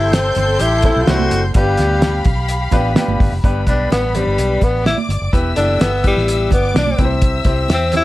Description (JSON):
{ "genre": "uptempo 1960s-style soul", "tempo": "127 BPM", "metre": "4/4", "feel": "straight", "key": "G major", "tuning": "A4 = 441 Hz", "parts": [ { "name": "breathy tenor saxophone", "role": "melody", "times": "0.0-8.0 s", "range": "G3 to G4", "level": "-18 LUFS", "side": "left 2 dB", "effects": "none" }, { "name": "mellow saxophone section", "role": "second line", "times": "0.0-1.3 s", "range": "E3 to A4", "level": "-25 LUFS", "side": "right 4 dB", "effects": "none" }, { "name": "warm studio string section", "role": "second line", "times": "0.0-8.0 s", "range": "G4 to G6", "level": "-24 LUFS", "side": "left 2 dB", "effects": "none" }, { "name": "clear grand piano", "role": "accompaniment", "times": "0.0-8.0 s", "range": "G2 to D5", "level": "-22 LUFS", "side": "left 1 dB", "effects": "none" }, { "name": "vintage muted fingered electric bass", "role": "bass", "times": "0.0-8.0 s", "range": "E1 to E2", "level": "-19 LUFS", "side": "equal", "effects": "none" }, { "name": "cloth-damped thuddy drum kit", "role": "drums", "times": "0.1-8.0 s", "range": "hi-hat, kick drum, snare drum", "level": "-17 LUFS", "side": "equal", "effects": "none" }, { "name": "congas", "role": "percussion", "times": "0.1-8.0 s", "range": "none", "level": "-26 LUFS", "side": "right 9 dB", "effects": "none" } ], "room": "light reverb", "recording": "none", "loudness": "-13 LUFS", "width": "side -17 dB against mid", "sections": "0.0-3.4 A section; 3.4-8.0 B section", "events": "tenor saxophone solo 3.4-8.0", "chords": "0.0 C6; 1.6 G7; 3.4 G; 5.3 Em; 7.0 C" }